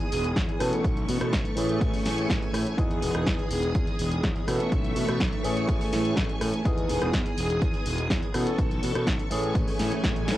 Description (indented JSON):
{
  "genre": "filtered disco house",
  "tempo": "124 BPM",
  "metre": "4/4",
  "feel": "straight",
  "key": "E major",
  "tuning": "A4 = 441 Hz",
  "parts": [
    { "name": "tine electric piano", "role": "accompaniment", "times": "0.0-10.4 s", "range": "E3 to A4", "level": "-30 LUFS", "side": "equal", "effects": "phaser, sidechain pumping, cassette tape" },
    { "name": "string machine, full ensemble", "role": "sustained chords", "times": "0.0-10.4 s", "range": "A3 to D#6", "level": "-32 LUFS", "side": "equal", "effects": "ensemble chorus, sidechain pumping, cassette tape" },
    { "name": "punchy analog drum machine", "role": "drums", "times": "0.0-10.4 s", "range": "hi-hat, rim click, snare drum", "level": "-32 LUFS", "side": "equal", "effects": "sidechain pumping on hats, cassette tape" },
    { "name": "fuzz fingered electric bass", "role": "bass", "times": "0.1-10.4 s", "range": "E1 to B2", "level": "-30 LUFS", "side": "equal", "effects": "overdrive, sidechain pumping" },
    { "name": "electronic kick drum", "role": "drums", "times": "0.4-10.1 s", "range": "none", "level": "-28 LUFS", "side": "equal", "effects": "cassette tape" }
  ],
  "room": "light reverb",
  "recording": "home recording on cassette",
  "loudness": "-24 LUFS",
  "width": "side -14 dB against mid",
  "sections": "0.0-10.4 A section",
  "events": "none",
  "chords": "0.0 Emaj7; 0.6 B9sus4; 1.6 Amaj7; 2.8 Emaj7; 4.5 B9sus4; 5.4 Amaj7; 6.7 Emaj7; 8.3 B9sus4; 9.3 Amaj7"
}